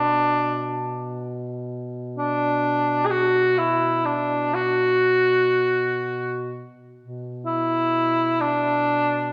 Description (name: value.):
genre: caucasian folk, Caucasian lament.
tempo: free time.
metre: none.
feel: none.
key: B minor.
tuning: A4 = 441 Hz.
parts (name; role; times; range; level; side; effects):
mellow cor anglais; melody; 0.0-9.3 s; D4 to G#4; -22 LUFS; equal; none.
dark duduk; drone; 0.0-9.3 s; B2; -34 LUFS; equal; none.
room: wet recital hall reverb, RT60 1.7 s.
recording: recorded in a church or concert hall.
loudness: -22 LUFS.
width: mono.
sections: 0.0-9.3 A section.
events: none.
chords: none.